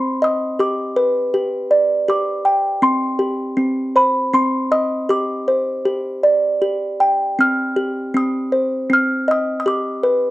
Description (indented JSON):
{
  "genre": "children's music",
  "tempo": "79 BPM",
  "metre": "3/4",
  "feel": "rubato",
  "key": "C harmonic minor",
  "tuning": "A4 = 440 Hz",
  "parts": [
    { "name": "music box", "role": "solo", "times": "0.0-10.3 s", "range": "C4 to F6", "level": "-16 LUFS", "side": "equal", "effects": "none" }
  ],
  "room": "light reverb",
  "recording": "dark, warm production",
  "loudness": "-16 LUFS",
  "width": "side -16 dB against mid",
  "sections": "0.0-10.3 A section",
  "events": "none",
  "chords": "0.0 Cm; 0.6 G; 2.8 Cm; 5.1 Gsus4; 5.9 G5; 7.4 Cm; 9.7 G",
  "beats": "| 0.59 1.34 2.08 | 2.83 3.58 4.34 | 5.10 5.86 6.62 | 7.39 8.15 8.91 | 9.66"
}